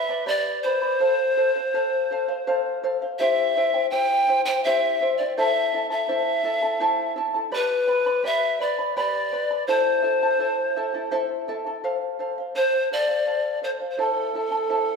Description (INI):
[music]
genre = andean folk, Andean ensemble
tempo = 83 BPM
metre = 3/4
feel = straight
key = unclear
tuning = A4 = 442 Hz
[part]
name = breathy pan flute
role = melody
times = 0.0-15.0 s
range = A4 to G5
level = -22 LUFS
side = left 1 dB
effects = none
[part]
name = charango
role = accompaniment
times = 0.0-15.0 s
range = E4 to B5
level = -25 LUFS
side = left 1 dB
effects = none
[sound]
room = wet scoring stage reverb, RT60 1.8 s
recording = minimal, uncompressed stereo recording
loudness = -21 LUFS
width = side -5 dB against mid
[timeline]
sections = 0.0-11.8 A section; 11.8-15.0 B section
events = none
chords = 0.0 G; 1.0 F; 3.2 C; 5.3 Am; 7.5 G; 9.7 Am; 11.8 F; 14.0 Am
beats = 0.26 | 0.99 1.72 2.45 | 3.17 3.90 4.62 | 5.35 6.07 6.79 | 7.51 8.23 8.95 | 9.67 10.39 11.11 | 11.83 12.54 13.26 | 13.98 14.69